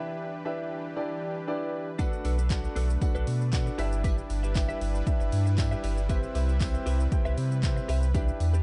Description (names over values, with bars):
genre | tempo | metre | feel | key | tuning
dance-pop | 117 BPM | 4/4 | straight | unclear | A4 = 441 Hz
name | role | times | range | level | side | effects
warm grand piano | accompaniment | 0.0-8.5 s | C4 to G5 | -37 LUFS | equal | sidechain pumping
soft supersaw | sustained chords | 0.0-8.6 s | C3 to B4 | -41 LUFS | equal | sidechain pumping
direct-recorded clean electric guitar | riff | 2.0-8.6 s | D4 to E5 | -41 LUFS | equal | analog chorus
house drum kit | drums | 2.0-8.6 s | handclaps, hi-hat, kick drum, shaker | -32 LUFS | equal | none
tambourine | percussion | 2.0-8.5 s | none | -53 LUFS | equal | none
warm sub bass | bass | 2.2-8.6 s | G1 to C3 | -29 LUFS | equal | sidechain pumping
room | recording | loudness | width
little or no reverb | dark, warm production, nothing above 10.7 kHz | -28 LUFS | mono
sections
0.0-8.6 A section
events
none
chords
0.0 Em7; 2.0 Bm7; 3.8 G6; 6.1 Cmaj7